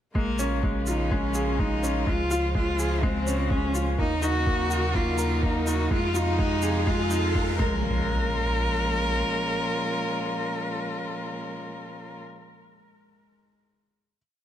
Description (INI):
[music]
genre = piano and strings electronica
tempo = 125 BPM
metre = 4/4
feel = straight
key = Bb minor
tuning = A4 = 441 Hz
[part]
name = warm cello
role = melody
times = 0.1-12.2 s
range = Bb3 to Bb4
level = -29 LUFS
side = equal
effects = tape echo
[part]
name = warm sub bass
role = bass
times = 0.1-9.2 s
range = Bb1 to F2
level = -29 LUFS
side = equal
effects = sidechain pumping
[part]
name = electronic kick drum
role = drums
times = 0.1-7.7 s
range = none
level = -27 LUFS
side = equal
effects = none
[part]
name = riser and impact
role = sound effects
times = 4.2-12.2 s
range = none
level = -36 LUFS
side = right 2 dB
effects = none
[part]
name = warm string quartet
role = sustained chords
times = 0.2-12.2 s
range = Bb2 to C5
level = -32 LUFS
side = left 1 dB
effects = sidechain pumping
[part]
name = clear upright piano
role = riff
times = 0.2-14.2 s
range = Ab3 to Bb4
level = -30 LUFS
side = left 1 dB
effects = tape echo
[part]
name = shaker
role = drums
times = 0.4-7.2 s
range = none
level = -38 LUFS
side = right 2 dB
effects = none
[sound]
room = moderate lush hall reverb, RT60 1.7 s, small room ambience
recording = none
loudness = -23 LUFS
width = side -10 dB against mid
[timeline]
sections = 0.1-7.8 build; 7.8-11.7 final hit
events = build-up 0.1-7.8; riser 4.2-7.8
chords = 0.1 Bbm7; 2.1 Dbmaj7; 4.0 Ebm7; 5.9 Fm7; 7.6 Bbm7